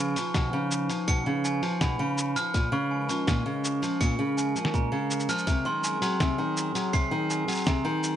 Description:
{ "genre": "folktronica", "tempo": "82 BPM", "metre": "4/4", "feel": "straight", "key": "unclear", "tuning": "A4 = 444 Hz", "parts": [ { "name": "glockenspiel with soft plastic mallets", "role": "second line", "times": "0.0-7.8 s", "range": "Ab5 to Db7", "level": "-31 LUFS", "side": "right 2 dB", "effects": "tape echo" }, { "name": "warbly tape-like pad", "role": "sustained chords", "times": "0.0-8.2 s", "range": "F3 to Cb5", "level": "-34 LUFS", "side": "left 1 dB", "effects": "chorus, built-in reverb" }, { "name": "nylon-string guitar", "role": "arpeggios", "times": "0.0-8.2 s", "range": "Bb2 to Gb3", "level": "-28 LUFS", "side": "equal", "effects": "tape echo" }, { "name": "lo-fi sampler-style drum kit", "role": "drums", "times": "0.2-8.2 s", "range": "hi-hat, shaker, snare drum", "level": "-31 LUFS", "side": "left 1 dB", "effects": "none" }, { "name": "electronic kick drum", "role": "drums", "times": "0.3-7.8 s", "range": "none", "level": "-28 LUFS", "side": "equal", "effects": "none" } ], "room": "moderate studio reverb, RT60 0.6 s", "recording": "nothing above 11.0 kHz", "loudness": "-24 LUFS", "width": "side -10 dB against mid", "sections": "0.0-8.2 A section", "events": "none", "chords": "0.0 Db7; 2.5 Bbm7; 5.5 Ab7" }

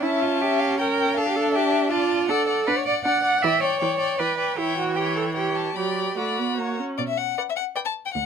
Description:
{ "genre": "quick classical-period movement for string quartet", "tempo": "144-162 BPM", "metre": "3/4", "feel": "rubato", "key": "B minor", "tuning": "A4 = 439 Hz", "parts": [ { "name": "rich violin", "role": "melody", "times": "0.0-8.3 s", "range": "D5 to B5", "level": "-28 LUFS", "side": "left 8 dB", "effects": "none" }, { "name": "rich violin", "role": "second line", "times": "0.0-8.1 s", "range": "C#5 to G5", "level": "-28 LUFS", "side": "left 5 dB", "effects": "none" }, { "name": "rich viola", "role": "accompaniment", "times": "0.0-8.1 s", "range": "E3 to B4", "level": "-28 LUFS", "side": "right 1 dB", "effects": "none" }, { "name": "warm cello", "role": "bass", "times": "0.0-8.3 s", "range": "D2 to F#5", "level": "-24 LUFS", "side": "right 4 dB", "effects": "none" } ], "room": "little or no reverb", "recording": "close, detailed microphones", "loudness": "-21 LUFS", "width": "side -7 dB against mid", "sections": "0.0-7.0 A section; 7.0-8.3 B section", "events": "none", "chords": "0.0 A7/C#; 1.2 Dm; 2.3 D; 3.4 Em7; 4.6 C#dim/E; 5.8 Bm/F#; 6.6 F#/A#; 7.0 Bm" }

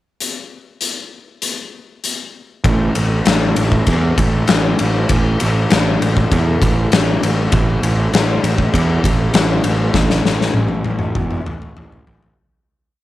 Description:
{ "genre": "garage rock duo or trio", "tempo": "99 BPM", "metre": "4/4", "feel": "straight", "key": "unclear", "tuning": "A4 = 440 Hz", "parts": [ { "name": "oversized low-tuned drum kit", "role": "drums", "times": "0.2-12.4 s", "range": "hi-hat, kick drum, ride cymbal, snare drum, toms", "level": "-16 LUFS", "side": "left 2 dB", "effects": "none" }, { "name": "fuzz picked electric bass", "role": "bass", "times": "2.6-12.3 s", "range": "A1 to E2", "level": "-16 LUFS", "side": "right 1 dB", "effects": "overdrive" } ], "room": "little or no reverb", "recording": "1960s-style stereo", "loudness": "-14 LUFS", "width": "side -15 dB against mid", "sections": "0.2-2.6 pickup bar; 2.6-12.4 riff", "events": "fade-out 9.9-12.4; drum fill 9.9-12.4", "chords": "none" }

